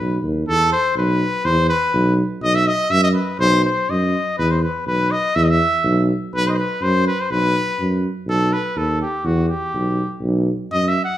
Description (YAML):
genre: balkan folk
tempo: 123 BPM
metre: 2/4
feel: straight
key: B phrygian dominant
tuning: A4 = 438 Hz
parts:
  - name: mellow trumpet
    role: melody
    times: 0.0-11.2 s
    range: F#4 to F#5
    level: -19 LUFS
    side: left 1 dB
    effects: none
  - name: mellow tuba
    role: bass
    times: 0.0-11.0 s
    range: B1 to F#2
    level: -19 LUFS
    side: right 1 dB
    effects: none
room: wet large studio reverb, RT60 1.1 s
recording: band playing live in one room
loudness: -16 LUFS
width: side -12 dB against mid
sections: 0.5-8.3 A section; 8.3-11.2 B section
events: trumpet solo 8.3-11.2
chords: 0.5 E5; 2.4 B; 4.4 E5; 6.3 B5; 8.3 B; 9.3 Em; 10.2 B5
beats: | 0.48 0.97 | 1.45 1.94 | 2.43 2.91 | 3.40 3.89 | 4.38 4.86 | 5.35 5.84 | 6.33 6.82 | 7.30 7.79 | 8.28 8.77 | 9.26 9.75 | 10.24 10.72